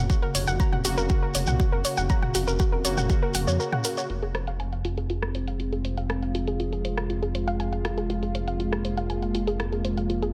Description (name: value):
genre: melodic techno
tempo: 120 BPM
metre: 4/4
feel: straight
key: F phrygian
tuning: A4 = 440 Hz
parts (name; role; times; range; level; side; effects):
- soft round pluck; arpeggios; 0.0-10.3 s; F4 to Bb5; -33 LUFS; equal; chorus, sidechain pumping, delay
- analog synth brass; stabs; 0.0-4.1 s; Db3 to Gb4; -33 LUFS; equal; chorus, cassette tape, sidechain pumping, delay
- dark detuned saw bass; bass; 0.0-10.3 s; F1 to F2; -31 LUFS; equal; sidechain pumping
- electronic kick drum; drums; 0.1-3.2 s; none; -26 LUFS; equal; studio ambience
- shekere; percussion; 0.1-4.1 s; none; -35 LUFS; equal; none
- house drum kit; drums; 0.3-10.3 s; hi-hat, rim click, toms; -35 LUFS; equal; sidechain pumping on toms, low-pass filter on toms, studio ambience, sidechain pumping on hats, low-pass filter on hats, low-pass filter on snare
- dark analog pad; sustained chords; 5.0-10.3 s; Ab3 to F4; -34 LUFS; equal; chorus, sidechain pumping
- warbly tape-like pad; texture; 4.1-10.3 s; C4 to F5; -41 LUFS; equal; chorus, built-in reverb, sidechain pumping
room: light reverb, digital ambience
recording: none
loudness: -26 LUFS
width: mono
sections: 0.0-4.1 A section; 4.1-10.3 B section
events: break 3.6-4.1; filter sweep on synth arpeggio sound 4.1-10.3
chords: 0.0 Gb/F; 4.1 Fm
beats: | 0.10 0.60 1.10 1.60 | 2.10 2.60 3.10 3.60 | 4.10 4.60 5.10 5.60 | 6.10 6.60 7.10 7.60 | 8.10 8.60 9.10 9.60 | 10.10